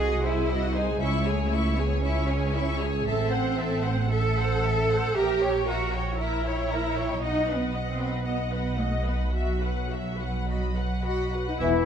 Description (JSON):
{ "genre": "classical", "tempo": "104-118 BPM", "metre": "4/4", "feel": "rubato", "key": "C# minor", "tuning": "A4 = 440 Hz", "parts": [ { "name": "rich symphonic violin section", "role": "melody", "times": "0.0-11.7 s", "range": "D#5 to C#6", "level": "-37 LUFS", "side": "left 6 dB", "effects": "none" }, { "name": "clear symphonic violin section", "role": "second line", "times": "0.0-11.9 s", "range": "E4 to F#5", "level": "-36 LUFS", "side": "left 4 dB", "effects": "none" }, { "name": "clear symphonic viola section", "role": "accompaniment", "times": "0.0-11.7 s", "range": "E3 to D#5", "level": "-32 LUFS", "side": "equal", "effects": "none" }, { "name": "clear studio cello section", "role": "bass", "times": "0.0-11.9 s", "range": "E2 to A4", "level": "-29 LUFS", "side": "right 2 dB", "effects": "none" }, { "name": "warm symphonic double bass section", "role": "bass", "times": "0.0-11.9 s", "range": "E1 to C#2", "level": "-28 LUFS", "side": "right 2 dB", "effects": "none" }, { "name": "warm clarinet", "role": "second line", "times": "11.1-11.9 s", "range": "D#4 to F#4", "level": "-29 LUFS", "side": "left 4 dB", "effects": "none" }, { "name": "mellow flute section", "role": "second line", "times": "11.6-11.9 s", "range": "E5", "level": "-28 LUFS", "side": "left 12 dB", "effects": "none" }, { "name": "warm oboe", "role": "second line", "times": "11.6-11.9 s", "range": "E4", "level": "-32 LUFS", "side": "right 1 dB", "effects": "none" }, { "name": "warm bassoon", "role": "accompaniment", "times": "11.6-11.9 s", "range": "E3", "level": "-27 LUFS", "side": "left 1 dB", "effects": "none" }, { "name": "mellow French horn section", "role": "sustained chords", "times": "11.6-11.7 s", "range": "E3", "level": "-29 LUFS", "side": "left 8 dB", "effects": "none" } ], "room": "moderate recital hall reverb, RT60 1.4 s", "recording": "dark, warm production", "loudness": "-24 LUFS", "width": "side -8 dB against mid", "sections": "0.0-11.6 A section", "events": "none", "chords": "0.0 G#7/B#; 1.0 C#m; 3.1 F#m7b5/A; 5.2 A#dim7; 7.2 B; 9.3 Bsus4", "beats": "0.49 | 1.00 1.51 2.03 2.54 | 3.06 3.57 4.12 4.64 | 5.16 5.68 6.19 6.70 | 7.21 7.73 8.25 8.78 | 9.34 9.92 10.48 11.05 | 11.61" }